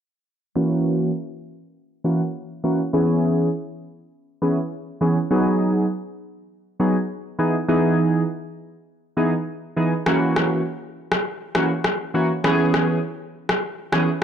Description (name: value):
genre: afrobeats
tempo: 101 BPM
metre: 4/4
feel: swing 55% on 16ths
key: unclear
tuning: A4 = 442 Hz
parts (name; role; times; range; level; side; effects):
- warm analog keys; accompaniment; 0.6-14.1 s; E3 to G#4; -20 LUFS; equal; chorus, low-pass filter
- electronic rim click; drums; 10.1-14.1 s; none; -23 LUFS; left 1 dB; none
room: moderate plate reverb, RT60 1.6 s, digital ambience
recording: dark, warm production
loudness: -19 LUFS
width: side -9 dB against mid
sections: 0.6-14.2 A section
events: filter sweep on synth keys 0.6-14.2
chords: 0.6 F#7; 2.9 C#m7; 5.3 G#m7; 7.4 Emaj7; 10.1 F#7; 12.4 C#m7